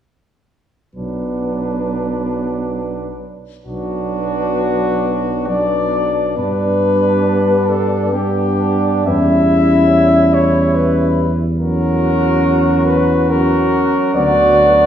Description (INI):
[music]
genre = classical, hymn-like piece for brass band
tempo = 60-72 BPM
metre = 3/4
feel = rubato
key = B minor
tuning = A4 = 440 Hz
[part]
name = warm cornet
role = melody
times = 1.0-14.9 s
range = F#4 to E5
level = -18 LUFS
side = left 3 dB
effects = none
[part]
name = warm flugelhorn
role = second line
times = 1.0-14.9 s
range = D4 to F#4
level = -21 LUFS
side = right 4 dB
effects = none
[part]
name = warm euphonium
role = accompaniment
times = 1.0-14.9 s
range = B3 to C#4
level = -19 LUFS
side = equal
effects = none
[part]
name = warm euphonium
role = accompaniment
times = 1.0-14.9 s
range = F#3 to G3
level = -23 LUFS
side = right 3 dB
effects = none
[part]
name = mellow tuba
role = bass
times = 1.0-14.9 s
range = B1 to G2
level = -20 LUFS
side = right 1 dB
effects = none
[sound]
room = wet recital hall reverb, RT60 1.4 s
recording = recorded in a church or concert hall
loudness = -13 LUFS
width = side -9 dB against mid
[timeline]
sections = 1.0-3.7 A section; 3.7-14.9 B section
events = none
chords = 1.0 Bm; 6.4 G; 9.1 C#dim/E; 11.6 F#7/E; 14.2 Bm/D